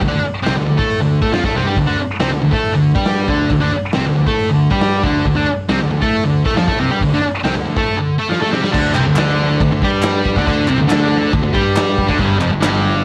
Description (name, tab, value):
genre	garage rock duo or trio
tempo	138 BPM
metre	4/4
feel	straight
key	unclear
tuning	A4 = 439 Hz
part	thick fuzz guitar	riff	0.0-13.0 s	F2 to A4	-18 LUFS	equal	distortion
part	fuzz picked electric bass	bass	0.0-13.0 s	F1 to A2	-22 LUFS	equal	overdrive
part	raw garage drum kit	drums	0.0-12.8 s	crash cymbal, hi-hat, kick drum, snare drum	-22 LUFS	equal	none
part	group handclap	percussion	8.9-12.7 s	none	-28 LUFS	equal	none
room	small room ambience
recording	none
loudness	-16 LUFS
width	mono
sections	0.0-8.7 A section; 8.7-13.0 B section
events	drum fill 8.3-8.7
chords	0.0 D5; 8.7 Csus2; 12.2 G5